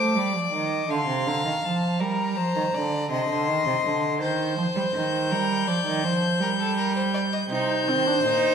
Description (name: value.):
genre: classical, baroque-style fugue for string quartet.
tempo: 54 BPM (dotted quarters).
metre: 12/8.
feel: straight.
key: G minor.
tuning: A4 = 440 Hz.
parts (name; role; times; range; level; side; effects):
rich violin; melody; 0.0-8.5 s; A5 to G6; -28 LUFS; left 6 dB; none.
rich violin; second line; 0.0-8.5 s; A4 to F5; -27 LUFS; left 1 dB; none.
warm cello; bass; 0.0-8.5 s; Bb2 to A3; -26 LUFS; right 4 dB; none.
warm viola; accompaniment; 7.5-8.5 s; C4 to Eb4; -25 LUFS; right 4 dB; none.
room: wet recital hall reverb, RT60 1.5 s.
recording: recorded in a church or concert hall.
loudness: -22 LUFS.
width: side -7 dB against mid.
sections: 0.0-8.5 A section.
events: none.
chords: 0.0 G5; 0.9 Bb; 5.3 Gm; 7.5 Cm.